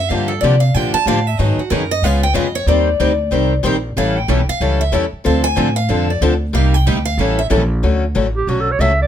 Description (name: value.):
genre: acoustic string swing (jazz manouche).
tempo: 187 BPM.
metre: 4/4.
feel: swing 61% on 8ths.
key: unclear.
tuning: A4 = 440 Hz.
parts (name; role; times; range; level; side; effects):
picked steel-string acoustic guitar; second line; 0.0-7.5 s; Gb4 to A5; -20 LUFS; left 1 dB; none.
upright bass; bass; 0.0-9.1 s; A1 to C3; -17 LUFS; equal; none.
picked steel-string acoustic guitar; accompaniment; 0.1-8.9 s; C3 to C5; -20 LUFS; left 6 dB; none.
picked steel-string acoustic guitar; accompaniment; 0.1-7.6 s; C3 to Bb4; -23 LUFS; right 10 dB; none.
warm clarinet; melody; 8.4-9.1 s; F#4 to E5; -17 LUFS; right 4 dB; none.
room: light reverb.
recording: close, detailed microphones.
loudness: -14 LUFS.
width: side -10 dB against mid.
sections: 0.0-7.8 A section; 7.8-9.1 A section.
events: steel-string acoustic guitar solo 0.0-7.8; clarinet solo 7.8-9.1.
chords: 0.1 Gm7; 1.4 Abm7; 2.0 Db7; 2.7 Eb6; 4.0 A7; 5.3 Dm7; 6.5 Cm9; 7.2 A7b9; 7.8 Dmaj7.